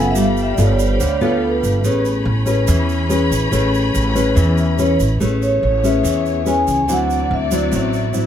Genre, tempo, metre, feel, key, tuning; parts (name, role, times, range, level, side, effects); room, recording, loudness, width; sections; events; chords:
bossa nova; 143 BPM; 4/4; straight; A major; A4 = 436 Hz
vibraphone with medium mallets; melody; 0.0-2.0, 4.6-8.3 s; A4 to G#5; -20 LUFS; equal
nylon-string guitar; accompaniment; 0.0-8.3 s; A2 to B4; -18 LUFS; left 1 dB
warm symphonic string section; sustained chords; 0.0-8.3 s; B3 to B5; -27 LUFS; left 2 dB
upright bass; bass; 0.0-8.3 s; F#1 to E2; -19 LUFS; equal
tube shaker; percussion; 0.2-8.3 s; -31 LUFS; right 9 dB
little or no reverb; close, detailed microphones; -14 LUFS; side -9 dB against mid
0.0-5.2 A section; 5.2-8.3 B section
vibraphone solo 0.0-5.2
0.2 G9; 1.8 Amaj9; 6.9 D9